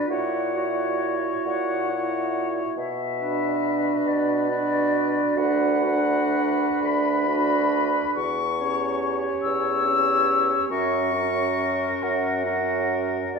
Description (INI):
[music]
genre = classical, slow romantic movement for wind quintet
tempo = 39-49 BPM (dotted quarters)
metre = 6/8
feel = rubato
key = B minor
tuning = A4 = 440 Hz
[part]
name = concert flute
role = melody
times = 0.0-13.4 s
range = D5 to E6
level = -26 LUFS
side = left 5 dB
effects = none
[part]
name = clear oboe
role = second line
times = 0.0-13.3 s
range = A#4 to C#5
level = -30 LUFS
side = left 2 dB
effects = none
[part]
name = clear French horn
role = accompaniment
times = 0.0-13.3 s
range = C#4 to E4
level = -28 LUFS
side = right 2 dB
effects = none
[part]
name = clear clarinet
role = accompaniment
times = 0.0-13.3 s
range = F#4 to G4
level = -30 LUFS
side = right 7 dB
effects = none
[part]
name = warm bassoon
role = bass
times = 0.1-13.4 s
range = D2 to B2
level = -28 LUFS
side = right 1 dB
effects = none
[sound]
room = wet recital hall reverb, RT60 1.4 s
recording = heard from further back in the room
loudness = -21 LUFS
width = side -5 dB against mid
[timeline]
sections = 0.0-13.4 A section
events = none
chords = 0.1 F#7/A#; 2.8 Bm; 5.4 Bm/D; 8.2 C#dim/E; 10.7 F#